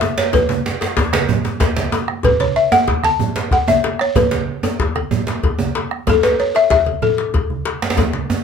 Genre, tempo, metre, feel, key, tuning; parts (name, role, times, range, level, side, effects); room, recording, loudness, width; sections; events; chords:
west african traditional, West African drum ensemble; 126 BPM (dotted quarters); 12/8; straight; A major pentatonic; A4 = 441 Hz
balafon; melody; 0.0-8.4 s; A4 to A5; -16 LUFS; left 2 dB; plate reverb
cowbell; percussion; 0.0-8.1 s; -26 LUFS; left 9 dB
djembe; percussion; 0.0-8.3 s; -24 LUFS; left 4 dB
djembe; percussion; 0.0-8.4 s; -21 LUFS; right 4 dB
bombo; percussion; 0.3-8.4 s; -21 LUFS; left 1 dB
congas; percussion; 0.3-8.4 s; -24 LUFS; right 7 dB
wet small room reverb, RT60 0.5 s; -15 LUFS; side -6 dB against mid
0.0-8.4 A section
drum fill 8.0-8.4